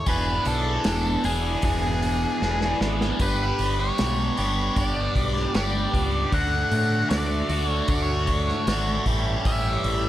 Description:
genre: psychedelic rock.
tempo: 77 BPM.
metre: 4/4.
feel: straight.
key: unclear.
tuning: A4 = 440 Hz.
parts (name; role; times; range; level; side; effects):
octave-fuzz lead guitar; melody; 0.0-10.1 s; G#4 to F#5; -28 LUFS; left 1 dB; distortion, tape echo.
hand-pumped harmonium; sustained chords; 0.0-10.1 s; A3 to G#5; -36 LUFS; right 6 dB; none.
biting overdriven guitar; riff; 0.1-10.1 s; A2 to G#4; -26 LUFS; equal; phaser.
growling fingered electric bass; bass; 0.1-10.1 s; E1 to A2; -27 LUFS; equal; overdrive.
vintage drum kit; drums; 0.1-10.0 s; hi-hat, kick drum, snare drum; -28 LUFS; equal; none.
room: little or no reverb.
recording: none.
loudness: -21 LUFS.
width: side -13 dB against mid.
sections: 0.0-10.1 A section.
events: drum fill 2.4-3.2.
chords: 0.1 E7; 3.2 G; 6.3 Dmaj7; 9.1 A7.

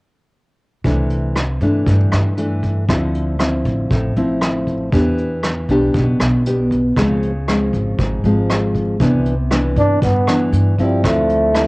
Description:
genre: bossa nova.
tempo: 118 BPM.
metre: 4/4.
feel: straight.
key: C major.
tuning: A4 = 440 Hz.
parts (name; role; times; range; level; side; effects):
nylon-string guitar; accompaniment; 0.8-11.7 s; G2 to G4; -18 LUFS; equal; cassette tape.
upright bass; bass; 0.8-11.7 s; Ab1 to G2; -19 LUFS; equal; none.
vintage brush drum kit; drums; 0.8-11.7 s; hi-hat, kick drum, rim click; -22 LUFS; equal; none.
mellow trombone; melody; 9.8-11.7 s; G3 to D4; -16 LUFS; equal; none.
room: small room reverb.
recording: home recording on cassette.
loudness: -14 LUFS.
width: side -25 dB against mid.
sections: 0.9-9.0 A section; 9.0-11.7 B section.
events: none.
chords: 0.9 C69; 2.9 Dm9; 4.9 Em7; 7.0 Dbmaj7; 9.0 Cmaj9; 11.0 Dm9.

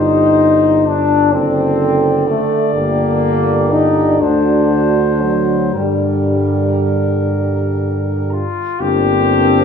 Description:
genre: classical, hymn-like piece for brass band.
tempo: 38-44 BPM (dotted quarters).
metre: 6/8.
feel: rubato.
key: G minor.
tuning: A4 = 441 Hz.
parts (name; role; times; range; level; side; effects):
warm flugelhorn; melody; 0.0-9.6 s; F4 to D5; -21 LUFS; left 7 dB; none.
mellow French horn section; second line; 0.0-9.6 s; C4 to A4; -20 LUFS; right 6 dB; none.
clear trombone section; accompaniment; 0.0-9.6 s; F#3 to Eb4; -15 LUFS; left 3 dB; none.
mellow euphonium; accompaniment; 0.0-9.6 s; D3 to Bb3; -22 LUFS; right 4 dB; none.
warm tuba; bass; 0.0-9.6 s; F#1 to G2; -18 LUFS; equal; none.
room: moderate scoring stage reverb, RT60 1.8 s.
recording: studio ambience.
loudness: -12 LUFS.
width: side -6 dB against mid.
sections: 0.0-8.8 A section.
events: none.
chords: 0.0 Cm/G; 1.3 D7/F#; 2.7 Gm; 4.2 D7; 5.7 Gm.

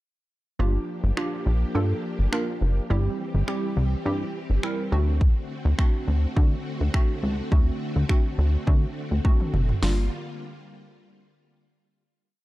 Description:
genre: dance-pop.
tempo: 104 BPM.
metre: 4/4.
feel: straight.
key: G dorian.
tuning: A4 = 442 Hz.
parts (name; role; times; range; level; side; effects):
hollow square pluck; accompaniment; 0.6-10.1 s; G3 to Bb4; -31 LUFS; right 2 dB; chorus, sidechain pumping.
string machine, violas; sustained chords; 0.6-10.1 s; D3 to G4; -34 LUFS; left 1 dB; ensemble chorus, sidechain pumping.
plucky analog bass; bass; 0.6-10.1 s; F#1 to D3; -22 LUFS; equal; sidechain pumping.
house drum kit; drums; 1.2-10.0 s; finger snaps, hi-hat, kick drum, snare drum, toms; -22 LUFS; equal; none.
room: digital ambience.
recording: dark, warm production.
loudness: -22 LUFS.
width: side -17 dB against mid.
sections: 0.6-9.8 verse; 9.8-12.1 final chord.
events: drum fill 9.2-9.8.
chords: 0.6 Gm7; 2.9 C/G; 4.9 D7; 9.8 Gm7.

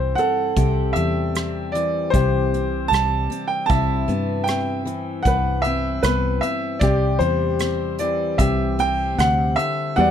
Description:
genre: acoustic folk-pop ballad.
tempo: 77 BPM.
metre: 4/4.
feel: straight.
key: unclear.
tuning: A4 = 441 Hz.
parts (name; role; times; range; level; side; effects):
clear grand piano; melody; 0.0-10.1 s; E4 to A5; -22 LUFS; right 1 dB; none.
fingerpicked steel-string acoustic guitar; accompaniment; 0.0-10.1 s; E2 to G4; -25 LUFS; left 4 dB; none.
fingered electric bass; bass; 0.0-10.1 s; C2 to G2; -23 LUFS; equal; none.
soft brush drum kit; drums; 0.2-9.8 s; hi-hat, kick drum, rim click; -25 LUFS; right 1 dB; none.
Celtic harp; arpeggios; 10.0-10.1 s; G3 to F#4; -20 LUFS; equal; none.
room: light reverb.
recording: none.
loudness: -18 LUFS.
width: side -9 dB against mid.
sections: 0.0-10.0 A section.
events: none.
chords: 0.0 C; 3.7 Cmaj7; 6.8 Cadd9.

